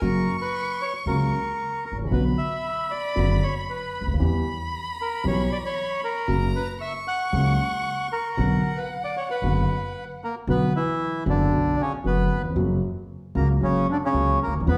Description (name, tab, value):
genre	tango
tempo	115 BPM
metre	4/4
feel	rubato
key	B harmonic minor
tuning	A4 = 439 Hz
part	bandoneon	melody	0.0-14.8 s	C#3 to F#5	-29 LUFS	equal	none
part	warm violin	second line	0.0-10.2 s	F#5 to C#6	-35 LUFS	equal	none
part	dark concert grand piano	accompaniment	0.0-14.8 s	F#1 to G4	-28 LUFS	equal	none
part	upright bass	bass	0.0-14.8 s	F#1 to E#2	-29 LUFS	equal	none
room	wet large studio reverb, RT60 1.3 s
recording	heard from further back in the room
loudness	-25 LUFS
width	mono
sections	0.0-10.5 A section; 10.5-14.8 A section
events	break 9.9-10.5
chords	0.0 F#; 2.1 Bm; 4.2 Em; 6.3 F#; 8.4 Bm; 12.6 F#